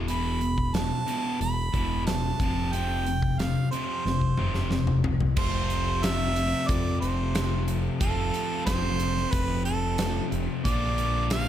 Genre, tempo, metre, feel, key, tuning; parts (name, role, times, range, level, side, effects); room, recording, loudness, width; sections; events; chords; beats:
classic rock; 91 BPM; 4/4; straight; A4 = 440 Hz
distorted electric guitar; riff; 0.0-11.5 s; E2 to F4; -29 LUFS; left 1 dB; distortion
growling fingered electric bass; bass; 0.0-11.5 s; E1 to F2; -29 LUFS; equal; overdrive
clear harmonica; melody; 0.1-11.5 s; A4 to B5; -31 LUFS; right 3 dB
huge arena drum kit; drums; 0.1-11.5 s; crash cymbal, hi-hat, kick drum, snare drum, toms; -30 LUFS; equal
light reverb; -24 LUFS; side -11 dB against mid
0.0-5.4 A section; 5.4-11.5 B section
drum fill 4.0-5.4
0.0 E5; 2.4 F5; 5.4 F; 10.7 Bb
| 0.07 0.74 1.40 2.06 | 2.72 3.38 4.05 4.71 | 5.37 6.03 6.69 7.35 | 8.01 8.67 9.33 9.99 | 10.65 11.31